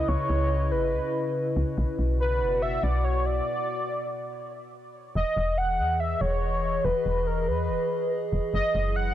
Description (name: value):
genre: IDM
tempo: 142 BPM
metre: 4/4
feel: swing 56% on 16ths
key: unclear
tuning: A4 = 441 Hz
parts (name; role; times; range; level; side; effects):
- warm velvety synth lead; melody; 0.0-9.1 s; A#4 to F#5; -27 LUFS; equal; chorus, tape echo
- warbly tape-like pad; sustained chords; 0.0-9.1 s; B2 to F#5; -32 LUFS; left 1 dB; chorus, built-in reverb
- woody FM bass; bass; 0.0-9.1 s; E1 to E2; -27 LUFS; equal; none
room: little or no reverb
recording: dry, gritty hardware recording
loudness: -24 LUFS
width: side -12 dB against mid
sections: 0.0-5.2 A section; 5.2-9.1 B section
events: break 3.5-5.2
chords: 0.0 C#m7; 1.8 Bm; 5.2 Emaj7; 8.5 F#7(no3)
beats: | 0.09 0.51 0.93 1.35 | 1.78 2.20 2.62 3.04 | 3.47 3.89 4.31 4.73 | 5.16 5.58 6.00 6.42 | 6.85 7.27 7.69 8.11 | 8.54 8.96